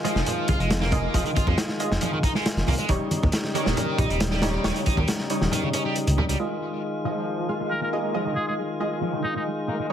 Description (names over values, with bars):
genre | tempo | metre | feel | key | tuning
breakbeat, breaks | 137 BPM | 4/4 | straight | F minor | A4 = 440 Hz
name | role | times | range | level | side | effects
tonewheel organ | sustained chords | 0.0-9.9 s | Db3 to F4 | -30 LUFS | left 2 dB | overdrive, wide subtle chorus, sidechain pumping
sludgy distorted guitar | riff | 0.0-9.9 s | Db3 to F4 | -30 LUFS | equal | overdrive, tube saturation, vintage 12-bit sampler grit, low-pass filter, ping-pong delay
orchestra-hit-like synth stab | stabs | 0.0-9.9 s | G3 to F5 | -31 LUFS | right 2 dB | built-in reverb, cassette tape, ping-pong delay
crunchy breakbeat drum kit | drums | 0.0-6.4 s | hi-hat, kick drum, snare drum | -26 LUFS | equal | none
dark detuned saw bass | bass | 0.2-6.4 s | Eb1 to F2 | -25 LUFS | equal | none
congas | percussion | 0.3-6.3 s | none | -32 LUFS | right 3 dB | none
trumpet with metal mute | melody | 7.7-9.4 s | Eb4 to Bb4 | -31 LUFS | equal | telephone sound, ping-pong delay
room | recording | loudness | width
light reverb, small room ambience | heavily compressed radio sound | -22 LUFS | side -9 dB against mid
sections
0.0-6.4 A section; 6.4-9.9 B section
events
kick drops out 5.5-6.4; filter sweep on synth stab 6.4-9.9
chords
0.0 Fm7; 2.9 Eb7; 6.4 Fm7